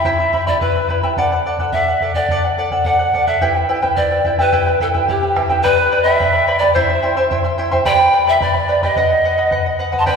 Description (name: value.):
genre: andean folk, Andean ensemble.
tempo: 108 BPM.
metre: 2/4.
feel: straight.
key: E minor.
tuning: A4 = 442 Hz.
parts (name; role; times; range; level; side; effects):
breathy bright pan flute; melody; 0.0-10.2 s; G4 to A5; -17 LUFS; equal; none.
charango; accompaniment; 0.0-10.2 s; E4 to C6; -17 LUFS; equal; none.
bombo; percussion; 0.0-10.2 s; none; -22 LUFS; left 1 dB; none.
breathy bright pan flute; second line; 5.6-10.2 s; B4 to C6; -21 LUFS; right 1 dB; none.
room: wet concert hall reverb, RT60 2.0 s.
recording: recorded in a church or concert hall.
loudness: -13 LUFS.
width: side -5 dB against mid.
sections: 0.0-5.6 A section; 5.6-10.2 B section.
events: none.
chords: 0.0 Em; 1.2 D; 3.4 Em; 5.6 G; 6.7 C; 7.8 G; 9.0 B.